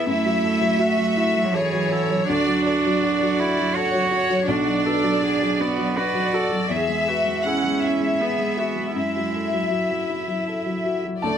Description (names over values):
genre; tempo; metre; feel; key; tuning
neoclassical piano and strings; 81 BPM; 3/4; rubato; F# minor; A4 = 441 Hz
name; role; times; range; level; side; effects
rich studio violin section; melody; 0.0-11.4 s; C#5 to F#5; -24 LUFS; left 2 dB; none
rich cello; second line; 0.0-11.4 s; E3 to F#4; -24 LUFS; right 5 dB; none
dark upright piano; accompaniment; 0.0-11.4 s; B1 to A5; -26 LUFS; left 3 dB; none
rich viola; accompaniment; 0.0-11.4 s; A3 to B4; -29 LUFS; right 3 dB; none
room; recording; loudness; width
light reverb; close, detailed microphones; -19 LUFS; side -8 dB against mid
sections
0.0-11.2 A section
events
none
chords
0.1 F#m7; 2.3 Dmaj7; 4.5 Bm; 6.7 E; 9.0 F#m7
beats
| 0.08 0.80 1.53 | 2.29 3.02 3.75 | 4.48 5.21 5.96 | 6.70 7.45 8.20 | 8.96 9.71 10.47 | 11.23